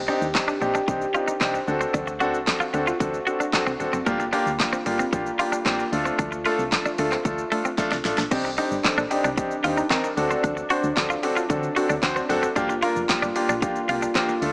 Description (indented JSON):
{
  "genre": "dance-pop",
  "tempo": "113 BPM",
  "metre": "4/4",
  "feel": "straight",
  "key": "C dorian",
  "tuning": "A4 = 440 Hz",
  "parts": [
    { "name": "warm French horn section", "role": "sustained chords", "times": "0.0-14.5 s", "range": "C3 to G4", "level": "-31 LUFS", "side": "equal", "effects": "sidechain pumping" },
    { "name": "solid FM bass", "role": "bass", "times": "0.0-14.5 s", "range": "Eb1 to D3", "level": "-32 LUFS", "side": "equal", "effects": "sidechain pumping" },
    { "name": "clear concert grand piano", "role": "accompaniment", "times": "0.1-14.5 s", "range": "A3 to C5", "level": "-24 LUFS", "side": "equal", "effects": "sidechain pumping" },
    { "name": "twelve-string electric guitar", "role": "riff", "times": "0.1-14.3 s", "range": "A3 to F#4", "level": "-26 LUFS", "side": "right 1 dB", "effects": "analog chorus" },
    { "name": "pop drum kit", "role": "drums", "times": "0.1-14.5 s", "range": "crash cymbal, handclaps, hi-hat, kick drum, shaker, snare drum", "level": "-27 LUFS", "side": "equal", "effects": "none" }
  ],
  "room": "moderate lush hall reverb, RT60 2.8 s",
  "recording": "small speaker sound",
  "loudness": "-21 LUFS",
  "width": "side -29 dB against mid",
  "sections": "0.0-8.3 A section; 8.3-14.5 B section",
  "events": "drum fill 7.8-8.3",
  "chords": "0.0 Cmadd9; 1.7 D7; 4.1 Gm7; 5.9 Dm; 8.3 Cmadd9; 10.2 D7; 12.6 Gm7",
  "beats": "0.35 0.88 1.41 | 1.94 2.47 3.00 3.54 | 4.07 4.60 5.13 5.66 | 6.19 6.72 7.25 7.78 | 8.31 8.85 9.38 9.91 | 10.44 10.97 11.50 12.03 | 12.56 13.09 13.62 14.15"
}